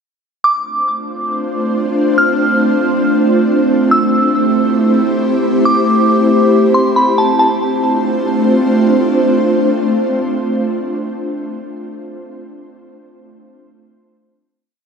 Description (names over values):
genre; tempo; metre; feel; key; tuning
hip hop; free time; none; none; D minor; A4 = 440 Hz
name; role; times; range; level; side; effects
glassy synth bell; melody; 0.4-8.7 s; A5 to F6; -16 LUFS; right 1 dB; chorus, tremolo, low-pass filter, tape echo
ethereal airy pad; sustained chords; 1.0-11.6 s; A3 to C5; -13 LUFS; equal; ensemble chorus, built-in reverb
room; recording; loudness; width
wet lush hall reverb, RT60 2.8 s; dreamy mix soaked in reverb; -11 LUFS; side -6 dB against mid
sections
0.4-7.4 verse; 7.4-10.9 final chord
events
none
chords
0.4 Dm7; 3.9 Am7; 7.4 Dm7